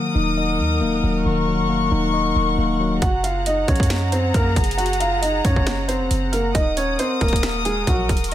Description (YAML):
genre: hip hop, trap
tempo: 136 BPM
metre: 4/4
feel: half-time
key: Eb dorian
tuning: A4 = 436 Hz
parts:
  - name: mellow tine electric piano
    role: accompaniment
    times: 0.0-3.0 s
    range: Eb3 to Eb5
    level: -21 LUFS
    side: left 3 dB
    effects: none
  - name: warm chamber string section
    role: sustained chords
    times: 0.0-8.3 s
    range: Ab4 to Eb6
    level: -24 LUFS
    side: left 3 dB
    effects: none
  - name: warm 808-style bass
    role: bass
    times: 0.2-8.3 s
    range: Eb1 to Gb2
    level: -23 LUFS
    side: equal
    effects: none
  - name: dark grand piano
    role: melody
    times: 3.0-8.3 s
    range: Gb3 to Gb5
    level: -22 LUFS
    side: right 1 dB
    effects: digital delay
  - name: trap drum kit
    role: drums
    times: 3.0-8.3 s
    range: finger snaps, hi-hat, kick drum, snare drum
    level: -22 LUFS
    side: equal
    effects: none
room: light reverb, digital ambience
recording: none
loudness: -17 LUFS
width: side -12 dB against mid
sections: 0.0-8.3 A section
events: break 0.0-3.0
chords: 0.0 Ebm; 3.0 Gbadd9; 6.5 Ebm